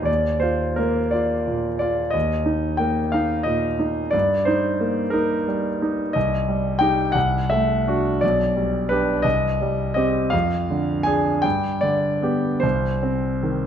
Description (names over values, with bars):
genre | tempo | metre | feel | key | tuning
classical, romantic character piece for solo piano | 49-61 BPM (dotted quarters) | 6/8 | rubato | Eb major, C minor from 6.2 s | A4 = 439 Hz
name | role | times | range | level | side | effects
clear concert grand piano | solo | 0.0-13.7 s | B1 to Ab5 | -19 LUFS | equal | none
room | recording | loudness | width
moderate recital hall reverb, RT60 1.4 s | close, detailed microphones | -19 LUFS | side -8 dB against mid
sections
0.0-13.7 A section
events
none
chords
0.1 Bb/Eb; 2.1 Eb5; 4.1 Eb/G; 6.2 Cm; 7.2 D7/C; 8.2 G/B; 9.2 Cm; 10.3 Ddim/F; 11.4 G; 12.6 Cm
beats
| 0.07 1.15 | 2.15 3.14 | 4.14 5.14 | 6.16 7.15 | 8.22 9.25 | 10.33 11.44 | 12.64